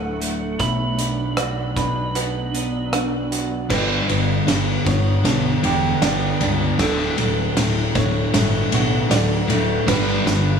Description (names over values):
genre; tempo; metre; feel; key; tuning
post-rock; 78 BPM; 4/4; straight; unclear; A4 = 440 Hz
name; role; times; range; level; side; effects
electric slide guitar; melody; 0.0-2.9 s; F#5 to B5; -30 LUFS; right 1 dB; digital delay
granular cloud pad; sustained chords; 0.0-10.6 s; F#3 to D4; -30 LUFS; right 5 dB; built-in reverb
electric guitar through a small old amp; arpeggios; 0.0-10.6 s; D2 to B4; -26 LUFS; right 1 dB; digital delay
growling fingered electric bass; bass; 0.0-10.6 s; D1 to C#2; -25 LUFS; right 1 dB; overdrive
loose indie drum kit; drums; 0.2-10.5 s; crash cymbal, hi-hat, kick drum, ride cymbal, rim click, snare drum; -23 LUFS; right 1 dB; none
felt-muted upright piano; arpeggios; 0.6-10.6 s; A4 to E5; -30 LUFS; right 7 dB; digital delay
thick fuzz guitar; riff; 3.7-10.6 s; D2 to G3; -21 LUFS; left 4 dB; distortion
sludgy distorted guitar; riff; 9.9-10.6 s; G2 to G3; -24 LUFS; right 10 dB; overdrive
room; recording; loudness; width
light reverb; small room ambience; -18 LUFS; side -6 dB against mid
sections
0.0-3.7 A section; 3.7-10.6 B section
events
build-up 3.7-10.6; drum fill 3.7-10.6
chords
0.0 D; 0.6 Bm; 3.7 G; 6.8 D; 9.9 G